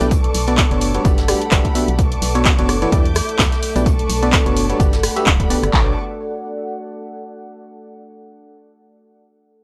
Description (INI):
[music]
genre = piano house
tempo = 128 BPM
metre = 4/4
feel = swing 56% on 16ths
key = B minor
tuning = A4 = 440 Hz
[part]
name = warm studio violin section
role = sustained chords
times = 0.0-6.0 s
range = G4 to G6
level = -31 LUFS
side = equal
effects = sidechain pumping
[part]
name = barking FM electric piano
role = riff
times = 0.0-5.9 s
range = B2 to E5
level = -23 LUFS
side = equal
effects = chorus, sidechain pumping, tape echo
[part]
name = organ-like FM bass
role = bass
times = 0.0-6.0 s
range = D1 to E2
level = -24 LUFS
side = equal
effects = sidechain pumping
[part]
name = punchy analog drum machine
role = drums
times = 0.0-5.7 s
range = handclaps, hi-hat, rim click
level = -23 LUFS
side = equal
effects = none
[part]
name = soft brush drum kit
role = drums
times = 0.0-5.7 s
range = hi-hat, snare drum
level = -35 LUFS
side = equal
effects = none
[part]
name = deep dark ambient pad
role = texture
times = 0.0-7.6 s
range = A4 to F#5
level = -29 LUFS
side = equal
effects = chorus, built-in reverb, sidechain pumping
[part]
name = punchy analog drum machine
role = drums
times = 0.1-5.9 s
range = handclaps, kick drum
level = -20 LUFS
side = equal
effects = none
[sound]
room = studio reverb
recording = dry, gritty hardware recording, transformer saturation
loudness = -17 LUFS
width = mono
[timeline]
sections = 0.0-5.7 A section; 5.7-7.6 B section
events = drop 0.0-5.7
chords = 0.1 Bm9; 1.0 Gmaj7; 2.0 Bm9; 2.9 Em7; 3.9 Bm9; 4.8 Gmaj7; 5.7 Bm9